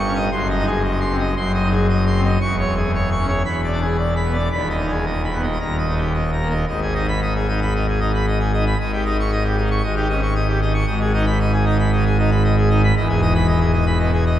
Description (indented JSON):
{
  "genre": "classical, organ toccata",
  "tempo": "115 BPM",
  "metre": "4/4",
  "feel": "straight",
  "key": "G# minor",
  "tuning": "A4 = 440 Hz",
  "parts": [
    { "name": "pipe organ, full organ", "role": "solo", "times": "0.0-14.4 s", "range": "D#1 to C#6", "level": "-17 LUFS", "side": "equal", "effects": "none" }
  ],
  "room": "wet cathedral reverb, RT60 6.0 s",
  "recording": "recorded in a church or concert hall",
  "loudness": "-17 LUFS",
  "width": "side -12 dB against mid",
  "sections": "0.0-6.7 A section; 6.7-14.4 B section",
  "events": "none",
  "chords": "0.3 G#7/F#; 2.4 C#m/E; 3.4 E7; 4.5 G#m/D#; 5.6 D#; 6.7 G#m; 8.8 D#7/G#; 10.9 G#m; 13.0 Emaj7",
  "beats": "| 0.32 0.84 1.36 1.88 | 2.40 2.92 3.45 3.98 | 4.52 5.07 5.61 6.14 | 6.68 7.21 7.74 8.26 | 8.79 9.31 9.83 10.35 | 10.87 11.40 11.92 12.44 | 12.96 13.48 14.00"
}